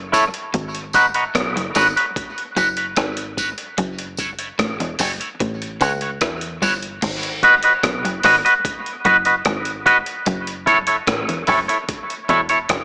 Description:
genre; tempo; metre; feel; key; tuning
dub reggae; 74 BPM; 4/4; straight; G# phrygian; A4 = 439 Hz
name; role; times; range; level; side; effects
deep dub fingered electric bass; bass; 0.0-12.8 s; E1 to E2; -26 LUFS; equal; none
twangy electric guitar; accompaniment; 0.1-12.6 s; D#4 to D#5; -16 LUFS; equal; high-pass filter, dub echo
dusty soul sampler-style drum kit; drums; 0.1-12.8 s; crash cymbal, hi-hat, kick drum, rim click; -24 LUFS; equal; none
tambourine; percussion; 0.1-6.8 s; none; -29 LUFS; right 1 dB; high-pass filter on perc, dub echo
clean electric guitar; riff; 0.5-12.8 s; E2 to E3; -29 LUFS; left 1 dB; dub echo
room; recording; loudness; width
wet spring reverb, RT60 2.4 s; small speaker sound; -16 LUFS; side -28 dB against mid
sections
0.0-7.0 A section; 7.0-12.8 B section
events
filter sweep 0.0-7.0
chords
0.0 F#m7; 0.5 G#m7; 3.8 F#m7; 5.4 A6; 7.0 G#m7; 10.3 F#m7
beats
| 0.54 1.35 2.16 2.97 | 3.78 4.59 5.41 6.22 | 7.03 7.84 8.65 9.46 | 10.27 11.08 11.89 12.70

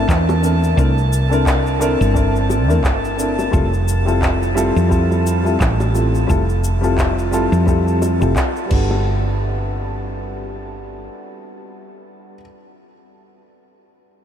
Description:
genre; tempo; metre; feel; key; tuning
sunset chillout; 87 BPM; 4/4; swing 57% on 16ths; G major; A4 = 440 Hz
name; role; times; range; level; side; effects
dark grand piano; accompaniment; 0.0-12.4 s; G3 to Bb4; -20 LUFS; left 1 dB; auto-pan, diffuse ambient delay
woody fretless electric bass; bass; 0.0-11.1 s; F1 to F2; -18 LUFS; equal; tube saturation
drifting glass-harmonics texture; texture; 0.0-9.1 s; A5; -30 LUFS; right 2 dB; chorus, built-in reverb
deep house drum kit; drums; 0.1-8.9 s; crash cymbal, handclaps, shaker; -27 LUFS; equal; none
electronic kick drum; drums; 0.1-8.9 s; none; -20 LUFS; right 1 dB; none
bongos; percussion; 0.3-9.0 s; none; barely audible; none; none
room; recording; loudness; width
moderate huge ambient reverb, RT60 7.9 s; dreamy mix soaked in reverb; -14 LUFS; side -9 dB against mid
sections
0.0-9.1 A section; 9.1-11.8 B section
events
filter sweep on fretless electric bass 0.0-9.1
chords
0.0 C13; 3.5 Fmaj9; 8.7 Gmaj9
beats
0.09 | 0.78 1.46 2.15 2.84 | 3.53 4.22 4.91 5.60 | 6.29 6.98 7.67 8.36 | 9.05 9.74 10.43 11.12

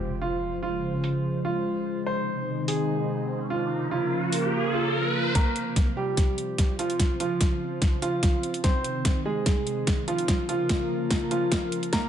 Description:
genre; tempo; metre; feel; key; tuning
heavy wobble dubstep; 146 BPM; 4/4; half-time; unclear; A4 = 436 Hz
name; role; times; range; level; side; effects
warm concert grand piano; melody; 0.0-12.1 s; F3 to C5; -29 LUFS; right 1 dB; vintage 12-bit sampler grit, tape echo
lush unison pad; sustained chords; 0.0-12.1 s; C3 to C5; -30 LUFS; equal; chorus, sidechain pumping
impact and riser; sound effects; 0.0-5.4, 11.9-12.1 s; none; -32 LUFS; equal; none
dubstep drum kit; drums; 1.0-12.0 s; hi-hat, snare drum; -30 LUFS; equal; low-pass filter on hats, low-pass filter on snare, low-pass filter on cymbals
electronic kick drum; drums; 5.4-12.0 s; none; -24 LUFS; equal; overdrive
room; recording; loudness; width
moderate digital room reverb, RT60 1.1 s; high-pass filter, nothing above 11.0 kHz; -24 LUFS; side -9 dB against mid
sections
0.0-5.4 A section; 5.4-12.1 B section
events
impact 0.0-0.4; filter sweep on analog synth pad 0.0-5.4; riser 3.0-5.4; build-up 5.4-12.1; drum fill 5.4-12.1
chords
0.4 Db; 2.1 Ab/C; 3.7 Bbm/Db; 5.4 F5; 7.0 Db; 8.6 Ab/C; 10.3 Bbm/Db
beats
0.01 | 0.42 0.83 1.24 1.65 | 2.06 2.48 2.89 3.30 | 3.71 4.12 4.53 4.94 | 5.35 5.76 6.17 6.58 | 7.00 7.41 7.82 8.23 | 8.64 9.05 9.46 9.87 | 10.28 10.69 11.11 11.52 | 11.93

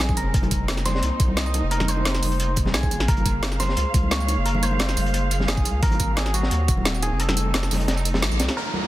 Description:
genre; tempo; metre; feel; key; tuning
liquid drum and bass; 175 BPM; 4/4; straight; unclear; A4 = 440 Hz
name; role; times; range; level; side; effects
clean electric guitar; melody; 0.0-8.9 s; Gb4 to Eb5; -29 LUFS; equal; dub echo
rich studio string section; sustained chords; 0.0-8.9 s; Bb2 to F5; -31 LUFS; right 2 dB; vintage 12-bit sampler grit, sidechain pumping
saturated sub bass; bass; 0.0-8.5 s; Eb1 to Eb2; -24 LUFS; equal; none
crunchy breakbeat drum kit; drums; 0.0-8.6 s; hi-hat, snare drum; -30 LUFS; equal; high-pass filter on hats, high-pass filter on snare, high-pass filter on room
drum and bass drum kit; drums; 0.0-8.6 s; hi-hat, snare drum, tambourine; -27 LUFS; right 1 dB; overdrive
electronic kick drum; drums; 0.1-6.8 s; none; -22 LUFS; equal; overdrive
bongos and congas; percussion; 0.1-8.8 s; none; -32 LUFS; left 1 dB; none
downlifter; sound effects; 8.6-8.9 s; none; -26 LUFS; right 1 dB; none
room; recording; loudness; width
light reverb, small room ambience; dense, heavily limited modern master; -20 LUFS; side -15 dB against mid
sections
0.0-8.6 A section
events
drop 0.0-8.6; kick drops out 7.2-8.6; band accent 8.2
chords
0.3 F7sus4; 2.9 Gbmaj7; 5.8 Ab13; 7.2 F7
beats
0.00 | 0.34 0.68 1.03 1.37 | 1.71 2.06 2.40 2.74 | 3.08 3.43 3.77 4.11 | 4.46 4.80 5.14 5.48 | 5.83 6.17 6.51 6.86 | 7.20 7.54 7.88 8.23 | 8.57

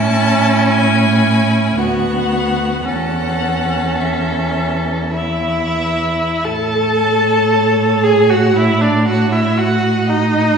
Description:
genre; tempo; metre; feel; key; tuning
classical, slow romantic movement for string quartet; 42-60 BPM; 3/4; rubato; A major; A4 = 440 Hz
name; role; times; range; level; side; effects
clear violin; melody; 0.0-10.6 s; C#5 to A5; -23 LUFS; left 4 dB; none
rich violin; second line; 0.0-10.6 s; E4 to A5; -21 LUFS; left 1 dB; none
clear viola; accompaniment; 0.0-10.6 s; B3 to A4; -17 LUFS; right 1 dB; none
warm cello; bass; 0.0-10.6 s; D2 to A2; -17 LUFS; right 2 dB; none
room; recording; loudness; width
wet recital hall reverb, RT60 1.6 s; recorded in a church or concert hall, studio reverb; -13 LUFS; side -6 dB against mid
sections
0.0-6.4 A section; 6.4-10.6 B section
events
none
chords
0.0 A; 1.8 Bm/D; 2.9 A/E; 5.1 N.C.; 6.4 A; 9.6 B7/A (rootless)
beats
0.71 1.77 | 2.87 4.00 5.13 | 6.44 7.51 8.55 | 9.57 10.58

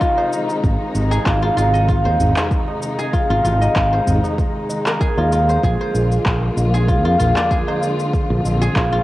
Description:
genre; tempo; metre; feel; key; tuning
organic downtempo; 96 BPM; 4/4; swing 54% on 16ths; unclear; A4 = 442 Hz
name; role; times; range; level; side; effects
dark studio string section; sustained chords; 0.0-9.0 s; C3 to F4; -24 LUFS; left 1 dB; sidechain pumping, cassette tape
guzheng; arpeggios; 0.0-9.0 s; F4 to Eb5; -20 LUFS; equal; cassette tape, tape echo
electronic cabasa and handclaps; drums; 0.0-8.9 s; none; -26 LUFS; equal; overdrive, cassette tape
electronic kick drum; drums; 0.0-8.9 s; none; -20 LUFS; equal; overdrive, cassette tape
tabla; percussion; 0.2-8.6 s; none; -28 LUFS; right 1 dB; none
fretless electric bass; bass; 0.6-9.0 s; Ab1 to F2; -18 LUFS; equal; sidechain pumping
room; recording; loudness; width
moderate spring reverb, RT60 2.5 s; home recording on cassette; -15 LUFS; side -16 dB against mid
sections
0.0-9.0 A section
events
none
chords
0.0 Fm7; 0.6 Ab; 5.6 Bb7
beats
0.01 | 0.63 1.26 1.88 2.51 | 3.13 3.76 4.38 5.01 | 5.63 6.26 6.88 7.51 | 8.13 8.76

